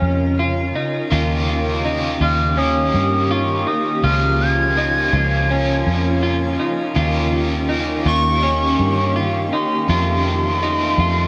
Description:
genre	dream pop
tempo	82 BPM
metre	4/4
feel	straight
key	Bb dorian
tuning	A4 = 435 Hz
part	granular cloud pad	sustained chords	0.0-11.3 s	Db3 to Bb4	-27 LUFS	equal	built-in reverb
part	clean electric guitar	arpeggios	0.0-11.3 s	Db4 to F4	-26 LUFS	equal	subtle chorus, digital delay
part	vintage muted fingered electric bass	bass	0.0-11.3 s	Db2 to G2	-23 LUFS	equal	none
part	crunchy overdriven guitar	accompaniment	1.1-11.3 s	F2 to G4	-26 LUFS	equal	harmonic tremolo, subtle chorus
part	warbly nostalgic lead	melody	2.2-11.3 s	C6 to Ab6	-25 LUFS	equal	chorus, digital delay
room	moderate shimmer reverb, RT60 6.3 s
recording	none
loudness	-18 LUFS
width	mono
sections	0.0-11.3 A section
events	none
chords	0.0 Bbm; 1.1 Eb7; 4.0 Bbm/Db; 7.0 Eb7; 9.9 F7

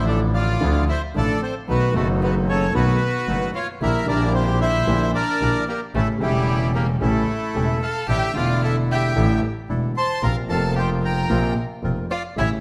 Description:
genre	tango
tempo	112 BPM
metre	4/4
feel	rubato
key	unclear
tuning	A4 = 439 Hz
part	bandoneon	melody	0.0-12.5 s	E4 to C6	-28 LUFS	equal	slapback echo
part	warm violin	second line	0.0-12.5 s	G3 to C5	-30 LUFS	equal	none
part	warm concert grand piano	accompaniment	0.0-12.6 s	E1 to F#4	-27 LUFS	equal	none
part	bandoneon	stabs	0.0-12.6 s	B3 to Bb4	-35 LUFS	equal	none
part	rich double bass	bass	0.0-12.6 s	E1 to D2	-25 LUFS	equal	none
room	moderate scoring stage reverb, RT60 1.6 s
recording	close, detailed microphones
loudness	-21 LUFS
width	mono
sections	0.0-12.6 A section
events	none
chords	0.0 Dmadd9; 1.7 B7; 3.8 Em7b5/Bb; 5.9 A7; 8.1 Asus4; 10.2 Bbsus2

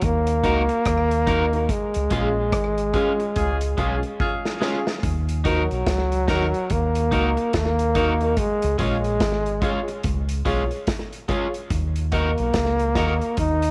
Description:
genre	roots reggae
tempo	72 BPM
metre	4/4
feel	swing 61% on 16ths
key	Eb minor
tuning	A4 = 440 Hz
part	clear trombone	melody	0.0-13.7 s	Gb3 to Eb4	-26 LUFS	equal	tape echo
part	deep dub fingered electric bass	bass	0.0-13.7 s	Ab1 to Eb2	-27 LUFS	equal	none
part	vintage drum kit	drums	0.0-13.7 s	hi-hat, kick drum, rim click, snare drum	-29 LUFS	equal	slapback echo
part	electric guitar at the edge of break-up	accompaniment	0.4-13.1 s	Ab3 to Bb4	-32 LUFS	equal	tape echo
part	warm upright piano	stabs	0.4-13.2 s	Db4 to Eb5	-32 LUFS	equal	none
part	warm horn section	second line	3.4-4.8 s	Db4 to Ab4	-31 LUFS	equal	tape echo
room	small room ambience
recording	none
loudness	-22 LUFS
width	mono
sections	0.0-5.0 A section; 5.0-13.7 A section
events	band accent 1.7-5.0; drum fill 4.2-5.0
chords	0.0 Ebm; 1.7 Db; 5.0 Ebm; 8.4 Db; 11.7 Ebm

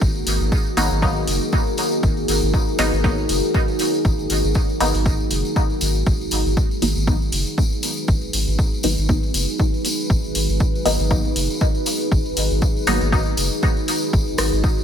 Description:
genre	dub techno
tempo	119 BPM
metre	4/4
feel	swing 56% on 16ths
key	G# minor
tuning	A4 = 440 Hz
part	deep dark ambient pad	sustained chords	0.0-14.8 s	D#4 to C#5	-24 LUFS	equal	chorus, built-in reverb, sidechain pumping
part	round analog bass	bass	0.0-14.6 s	F#1 to G#1	-23 LUFS	equal	sidechain pumping
part	electronic kick drum	drums	0.0-14.7 s	none	-19 LUFS	equal	none
part	tambourine	percussion	0.0-14.8 s	none	-28 LUFS	left 2 dB	none
part	punchy analog drum machine	drums	0.3-14.5 s	hi-hat, rim click	-27 LUFS	left 1 dB	none
part	filtered dub chord stab	stabs	0.8-13.3 s	F#3 to D#4	-25 LUFS	left 1 dB	chorus, phaser, sidechain pumping, dub echo
room	light reverb, digital ambience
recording	none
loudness	-17 LUFS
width	side -8 dB against mid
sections	0.0-14.8 A section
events	none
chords	0.0 G#m7

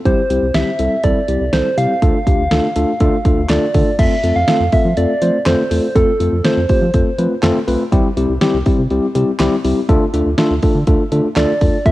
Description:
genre	synth-pop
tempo	122 BPM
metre	4/4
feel	straight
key	unclear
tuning	A4 = 440 Hz
part	soft struck synth lead	melody	0.1-7.6, 11.4-11.9 s	A4 to F5	-18 LUFS	right 2 dB	chorus, analog delay
part	mellow tine electric piano	accompaniment	0.1-11.9 s	G3 to C5	-16 LUFS	left 1 dB	cassette tape
part	round analog bass	bass	0.1-11.9 s	B1 to F3	-19 LUFS	equal	none
part	pop drum kit	drums	0.1-11.9 s	crash cymbal, handclaps, hi-hat, kick drum, snare drum	-17 LUFS	equal	cassette tape
room	light reverb, digital ambience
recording	home recording on cassette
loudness	-13 LUFS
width	side -16 dB against mid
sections	0.0-4.0 A section; 4.0-11.9 B section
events	none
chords	0.1 C; 2.0 Dm; 4.0 F; 7.9 C; 9.9 Dm

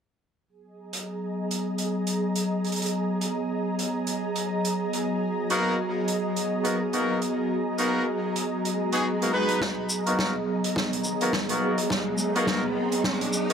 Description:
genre	glitch hop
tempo	105 BPM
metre	4/4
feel	swing 59% on 16ths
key	G# minor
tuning	A4 = 442 Hz
part	warbly tape-like pad	sustained chords	0.9-13.5 s	F#3 to G#4	-28 LUFS	equal	chorus, built-in reverb, sidechain pumping
part	ethereal airy pad	texture	0.9-13.5 s	G#4 to A#5	-31 LUFS	right 1 dB	ensemble chorus, built-in reverb, sidechain pumping
part	soft-mallet drum kit	drums	0.9-13.5 s	hi-hat, shaker, snare drum	-30 LUFS	equal	none
part	bright horn section	stabs	5.5-13.5 s	G#3 to B4	-28 LUFS	equal	sidechain pumping, low-pass filter, digital delay
part	swell and riser	sound effects	8.8-13.5 s	none	-34 LUFS	left 1 dB	none
part	electronic kick drum	drums	9.6-13.2 s	none	-35 LUFS	left 1 dB	none
room	moderate plate reverb, RT60 1.9 s, studio reverb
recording	none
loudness	-24 LUFS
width	side -7 dB against mid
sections	0.5-9.6 A section; 9.6-13.5 B section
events	swell 8.8-9.6; build-up 9.6-13.5; drum fill 9.6-13.5; filter sweep on horn section 9.6-13.5; riser 10.8-13.5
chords	0.5 G#m7

